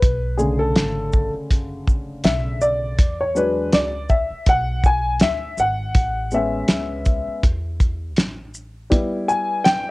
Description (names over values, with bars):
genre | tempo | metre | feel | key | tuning
hip hop, jazz-hop | 81 BPM | 4/4 | swing 57% on 16ths | B dorian | A4 = 440 Hz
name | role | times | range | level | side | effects
dark upright piano | accompaniment | 0.0-9.9 s | C#3 to G#5 | -21 LUFS | left 1 dB | cassette tape
upright bass | bass | 0.0-8.9 s | F#1 to E2 | -27 LUFS | equal | none
cloth-damped thuddy drum kit | drums | 0.0-9.9 s | hi-hat, kick drum, shaker, snare drum | -18 LUFS | equal | none
room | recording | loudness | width
light reverb | home recording on cassette | -18 LUFS | side -21 dB against mid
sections
0.0-9.9 A section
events
upright piano solo 0.0-9.9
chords
0.0 Bm7; 3.0 E7; 6.0 Amaj7; 8.9 G6